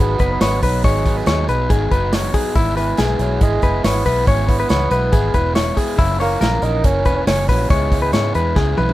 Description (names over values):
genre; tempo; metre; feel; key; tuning
jangly indie pop; 140 BPM; 4/4; straight; unclear; A4 = 440 Hz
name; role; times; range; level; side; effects
mellow bassoon; melody; 0.0-8.6 s; E3 to D#4; -23 LUFS; right 2 dB; none
crunchy overdriven guitar; accompaniment; 0.0-8.9 s; F#2 to E4; -24 LUFS; right 5 dB; none
direct-recorded clean electric guitar; arpeggios; 0.0-8.9 s; E4 to C#5; -21 LUFS; left 4 dB; none
vintage muted fingered electric bass; bass; 0.0-8.9 s; E1 to G#2; -20 LUFS; equal; none
modern studio drum kit; drums; 0.2-8.9 s; hi-hat, kick drum, snare drum, toms; -19 LUFS; equal; none
tambourine; percussion; 0.4-8.9 s; none; -40 LUFS; left 4 dB; none
room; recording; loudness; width
little or no reverb; rough home demo mix; -14 LUFS; side -16 dB against mid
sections
0.0-8.9 A section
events
drum fill 8.6-8.9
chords
0.0 G#m7; 2.6 E; 6.0 F#7; 7.7 C#m7